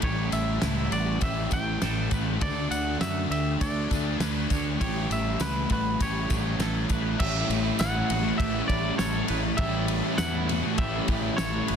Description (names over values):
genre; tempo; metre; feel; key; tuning
rock, shoegaze and dream pop; 100 BPM; 4/4; straight; A mixolydian; A4 = 440 Hz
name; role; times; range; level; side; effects
twangy electric guitar; melody; 0.0-11.8 s; B4 to G5; -32 LUFS; equal; analog delay
twangy electric guitar; arpeggios; 0.0-11.8 s; E4 to C#5; -39 LUFS; right 6 dB; wide subtle chorus, analog delay
biting overdriven guitar; riff; 0.0-11.8 s; A2 to D4; -35 LUFS; equal; none
overdriven semi-hollow guitar; riff; 0.0-11.8 s; A2 to G4; -32 LUFS; right 10 dB; reverse reverb
thick fuzz guitar; riff; 0.0-11.8 s; A2 to D4; -32 LUFS; left 10 dB; distortion, ensemble chorus
growling fingered electric bass; bass; 0.0-11.8 s; G1 to F#2; -31 LUFS; equal; overdrive
loose indie drum kit; drums; 0.0-11.8 s; crash cymbal, kick drum, ride cymbal, snare drum; -30 LUFS; equal; none
tambourine; percussion; 0.3-11.5 s; none; -42 LUFS; left 10 dB; none
room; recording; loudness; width
light reverb, small room reverb; dense, heavily limited modern master; -24 LUFS; side -7 dB against mid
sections
0.0-7.2 A section; 7.2-11.8 B section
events
none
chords
0.0 A7; 2.4 D6; 4.8 A7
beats
| 0.03 0.62 1.22 1.82 | 2.42 3.01 3.61 4.21 | 4.81 5.41 6.00 6.60 | 7.20 7.80 8.40 8.99 | 9.59 10.19 10.79 11.39